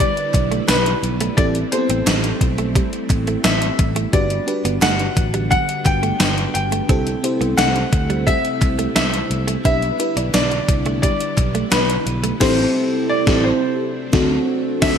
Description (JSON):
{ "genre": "1980s-style pop", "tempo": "87 BPM", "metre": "4/4", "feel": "straight", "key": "E minor", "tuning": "A4 = 437 Hz", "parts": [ { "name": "clear baby grand piano", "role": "melody", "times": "0.0-15.0 s", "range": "B4 to G5", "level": "-22 LUFS", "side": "left 1 dB", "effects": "wide subtle chorus, ping-pong delay" }, { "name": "FM electric piano with soft pad layer", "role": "accompaniment", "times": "0.0-15.0 s", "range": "B3 to D5", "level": "-23 LUFS", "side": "left 1 dB", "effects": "chorus" }, { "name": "string machine, violas", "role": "sustained chords", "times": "0.0-15.0 s", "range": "C3 to E4", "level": "-28 LUFS", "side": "equal", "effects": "ensemble chorus" }, { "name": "direct-recorded clean electric guitar", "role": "riff", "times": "0.0-12.4 s", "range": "F#3 to E4", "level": "-27 LUFS", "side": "right 7 dB", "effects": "wide subtle chorus, ping-pong delay" }, { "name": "fretless electric bass", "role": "bass", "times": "0.0-15.0 s", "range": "G1 to D2", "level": "-23 LUFS", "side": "equal", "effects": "none" }, { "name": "gated 80s digital drum machine", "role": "drums", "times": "0.0-15.0 s", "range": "crash cymbal, hi-hat, kick drum, snare drum, tambourine", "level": "-19 LUFS", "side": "equal", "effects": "gated reverb, gated reverb snare, overdrive" }, { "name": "group handclap", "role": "percussion", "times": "0.3-11.9 s", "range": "none", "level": "-33 LUFS", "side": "right 6 dB", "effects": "none" } ], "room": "moderate plate reverb, RT60 2.7 s", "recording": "bright 1980s-style digital production", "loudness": "-16 LUFS", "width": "side -8 dB against mid", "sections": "0.0-15.0 A section", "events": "band accent 12.4-15.0", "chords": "0.0 Em7/B; 1.4 Am7; 4.1 Gmaj7; 6.9 C6; 9.7 Em7/B; 12.4 Am7; 13.8 D7" }